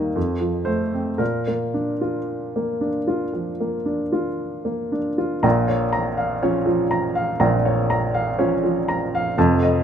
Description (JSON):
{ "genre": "classical, romantic character piece for solo piano", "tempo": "54-62 BPM", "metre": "4/4", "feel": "rubato", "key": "Bb major, Bb minor from 5.4 s", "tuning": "A4 = 440 Hz", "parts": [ { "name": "warm upright piano", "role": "solo", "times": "0.0-9.8 s", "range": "F1 to Bb5", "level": "-19 LUFS", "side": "equal", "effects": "none" } ], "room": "moderate stone room reverb, RT60 1.1 s", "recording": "close, detailed microphones", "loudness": "-20 LUFS", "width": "side -8 dB against mid", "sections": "0.0-5.4 A section; 5.4-9.8 B section", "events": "none", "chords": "0.2 F7; 1.2 Bb; 5.4 Bbm" }